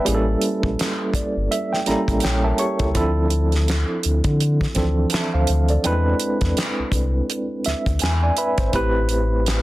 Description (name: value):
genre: R&B, neo-soul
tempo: 83 BPM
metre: 4/4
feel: swing 58% on 16ths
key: unclear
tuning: A4 = 440 Hz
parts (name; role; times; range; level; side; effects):
- mellow tine electric piano; accompaniment; 0.0-9.6 s; E3 to C#6; -22 LUFS; right 1 dB; medium tremolo, plate reverb
- sub bass with octave; bass; 0.1-9.6 s; G1 to D3; -20 LUFS; equal; none
- damped 70s drum kit; drums; 0.1-9.6 s; handclaps, hi-hat, kick drum, snare drum; -24 LUFS; equal; none
room: light reverb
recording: dense, heavily limited modern master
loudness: -18 LUFS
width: side -17 dB against mid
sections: 0.0-9.6 A section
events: tine electric piano fill 0.8-3.0, 7.3-8.7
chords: 0.1 A7b9; 3.0 Dm9; 5.8 E7b13; 8.7 Am9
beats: | 0.06 0.78 1.51 2.23 | 2.95 3.67 4.40 5.12 | 5.84 6.57 7.29 8.01 | 8.74 9.46